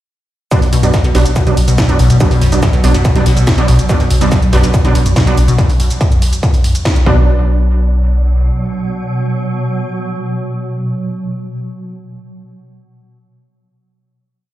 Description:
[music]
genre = driving peak-time techno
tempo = 142 BPM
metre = 4/4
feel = straight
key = B minor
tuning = A4 = 440 Hz
[part]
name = resonant blip pluck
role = riff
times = 0.5-7.5 s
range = B2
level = -16 LUFS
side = left 1 dB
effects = phaser, tube saturation, sidechain pumping, dub echo
[part]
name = rave stab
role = stabs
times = 0.5-11.1 s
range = F#3 to D4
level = -19 LUFS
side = right 3 dB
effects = chorus, built-in reverb, cassette tape, sidechain pumping, dub echo
[part]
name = swarming drone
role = drone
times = 1.3-11.1 s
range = B2 to F#3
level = -20 LUFS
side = right 1 dB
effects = built-in reverb, sidechain pumping
[part]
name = breakbeat sampler-style drum kit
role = drums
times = 0.5-5.5 s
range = hi-hat, shaker, snare drum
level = -30 LUFS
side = equal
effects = none
[part]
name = electronic kick drum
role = drums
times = 0.5-7.2 s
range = none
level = -13 LUFS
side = equal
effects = distortion, overdrive
[part]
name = techno drum kit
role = drums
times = 0.5-7.0 s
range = hi-hat, shaker, snare drum, toms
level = -19 LUFS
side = equal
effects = overdrive, sidechain pumping on hats, sidechain pumping on perc, sidechain pumping on toms
[part]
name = saturated sub bass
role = bass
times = 0.6-8.5 s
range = B1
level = -14 LUFS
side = equal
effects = overdrive, sidechain pumping, low-pass filter
[sound]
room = light reverb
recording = played on a big sound system in a bare room, stone room reverb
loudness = -10 LUFS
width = side -14 dB against mid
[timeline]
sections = 0.5-7.3 drop; 7.3-10.7 final hit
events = drop 0.5-7.3; band accent 6.9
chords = 0.5 Bm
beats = | 0.52 0.94 1.36 1.78 | 2.21 2.63 3.05 3.47 | 3.90 4.32 4.74 5.16 | 5.59 6.01 6.43 6.85 | 7.28 7.70 8.12 8.54 | 8.97 9.39 9.81 10.23

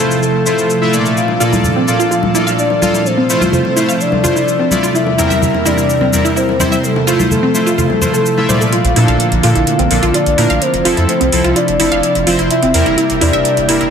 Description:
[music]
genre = progressive house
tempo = 127 BPM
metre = 4/4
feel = straight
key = unclear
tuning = A4 = 439 Hz
[part]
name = soft octave-layered synth lead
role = melody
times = 0.0-13.8 s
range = A4 to F5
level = -17 LUFS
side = left 2 dB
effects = chorus, tremolo, ping-pong delay
[part]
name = airy breathy pad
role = sustained chords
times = 0.0-13.9 s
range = E2 to Bb4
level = -18 LUFS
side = right 2 dB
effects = chorus
[part]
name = soft supersaw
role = stabs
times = 0.0-13.8 s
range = E2 to F5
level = -17 LUFS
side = left 1 dB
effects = ping-pong delay
[part]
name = electronic shaker and hi-hat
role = drums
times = 0.1-13.9 s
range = none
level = -21 LUFS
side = equal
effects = overdrive, high-pass filter on perc, high-pass filter on hats, high-pass filter on room
[part]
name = bongos and congas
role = percussion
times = 1.3-8.6 s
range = none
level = -20 LUFS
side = left 2 dB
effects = none
[part]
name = wide unison pluck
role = arpeggios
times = 1.4-13.9 s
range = C4 to F5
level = -17 LUFS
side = right 1 dB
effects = ping-pong delay
[part]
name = round analog bass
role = bass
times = 8.8-13.9 s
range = E1 to Bb2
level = -17 LUFS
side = right 1 dB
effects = none
[sound]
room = moderate lush hall reverb, RT60 1.7 s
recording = dense, heavily limited modern master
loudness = -11 LUFS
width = side -7 dB against mid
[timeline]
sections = 0.0-8.7 A section; 8.7-13.9 B section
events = build-up 8.7-13.9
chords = 0.0 Bbmaj7; 3.1 Fmaj7; 4.9 C7/E; 6.8 Bbmaj7; 10.6 Fmaj7; 12.5 C7/E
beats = 0.22 0.69 | 1.17 1.64 2.11 2.58 | 3.06 3.53 4.00 4.47 | 4.95 5.42 5.89 6.36 | 6.84 7.31 7.78 8.25 | 8.73 9.20 9.67 10.14 | 10.62 11.09 11.56 12.03 | 12.51 12.98 13.45

